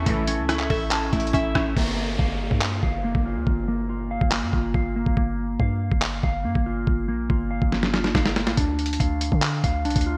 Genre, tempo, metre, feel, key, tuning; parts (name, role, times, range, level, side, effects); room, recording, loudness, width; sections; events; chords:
hip hop, trap; 141 BPM; 4/4; half-time; A4 = 440 Hz
mallet-like synth pluck; accompaniment; 0.0-1.8 s; A3 to A5; -32 LUFS; equal; chorus
warbly tape-like pad; sustained chords; 0.0-1.7 s; A4 to C#6; -37 LUFS; equal; chorus, built-in reverb
clean electric guitar; arpeggios; 0.0-10.2 s; Bb3 to F5; -30 LUFS; equal; subtle chorus, low-pass filter, delay
warm 808-style bass; bass; 0.0-10.2 s; F1 to D3; -30 LUFS; equal
lo-fi sampler-style drum kit; drums; 0.1-10.1 s; crash cymbal, handclaps, hi-hat, kick drum, rim click, snare drum; -26 LUFS; equal; gated reverb
downlifter; sound effects; 1.8-5.2 s; -38 LUFS; equal
light reverb; bright 1980s-style digital production; -24 LUFS; mono
0.0-1.8 A section; 1.8-10.2 B section
hi-hats muted 1.8-8.6; drum fill 7.7-8.6
0.0 A; 1.8 Gm7; 8.6 Dm